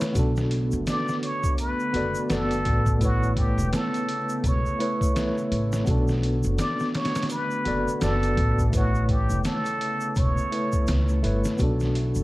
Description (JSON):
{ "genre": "trip hop", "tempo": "84 BPM", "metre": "4/4", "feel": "swing 59% on 16ths", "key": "B minor", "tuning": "A4 = 440 Hz", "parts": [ { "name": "tine electric piano", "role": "accompaniment", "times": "0.0-12.2 s", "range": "A3 to D5", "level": "-28 LUFS", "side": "equal", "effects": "tremolo, tape echo" }, { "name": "warbly tape-like pad", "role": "sustained chords", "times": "0.0-12.2 s", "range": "C#3 to B3", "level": "-34 LUFS", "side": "right 1 dB", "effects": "chorus, built-in reverb" }, { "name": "trip hop sampler-style drum kit", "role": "drums", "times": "0.0-12.1 s", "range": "hi-hat, kick drum, snare drum", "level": "-27 LUFS", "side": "equal", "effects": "small room ambience" }, { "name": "tube shaker", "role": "percussion", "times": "0.0-12.2 s", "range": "none", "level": "-43 LUFS", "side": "equal", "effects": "none" }, { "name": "upright bass", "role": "bass", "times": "0.2-12.2 s", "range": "E1 to C#2", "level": "-25 LUFS", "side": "equal", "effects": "tube saturation" }, { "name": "trumpet with plunger mute", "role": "melody", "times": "0.9-10.9 s", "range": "F#4 to D5", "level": "-30 LUFS", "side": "equal", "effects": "tape echo" } ], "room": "little or no reverb", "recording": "dark, warm production, vinyl crackle", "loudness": "-22 LUFS", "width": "side -18 dB against mid", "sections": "0.0-12.2 A section", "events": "none", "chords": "0.2 Bm7; 3.0 Aadd9; 5.9 Bm7; 8.7 Aadd9; 11.6 Bm7" }